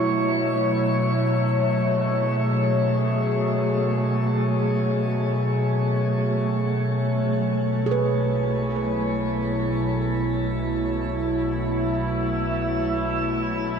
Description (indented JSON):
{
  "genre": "ambient",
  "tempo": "free time",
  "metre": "none",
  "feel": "none",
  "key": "unclear",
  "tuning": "A4 = 438 Hz",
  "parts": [
    { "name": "warbly tape-like pad", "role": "sustained chords", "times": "0.0-13.8 s", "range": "B2 to C#5", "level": "-21 LUFS", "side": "equal", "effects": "chorus, built-in reverb" },
    { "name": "handpan", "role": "arpeggios", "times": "0.0-1.0, 7.9-9.3 s", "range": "E4 to B4", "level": "-31 LUFS", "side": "right 6 dB", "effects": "diffuse ambient delay" },
    { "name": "warm sub bass", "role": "bass", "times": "7.3-13.8 s", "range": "B1", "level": "-36 LUFS", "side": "equal", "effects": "none" }
  ],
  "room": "wet shimmer reverb, RT60 7.8 s",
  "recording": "none",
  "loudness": "-21 LUFS",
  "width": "side -6 dB against mid",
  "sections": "0.0-7.3 A section; 7.3-13.8 B section",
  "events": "fade-in on sub bass 7.3-13.8",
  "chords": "0.0 B9sus4"
}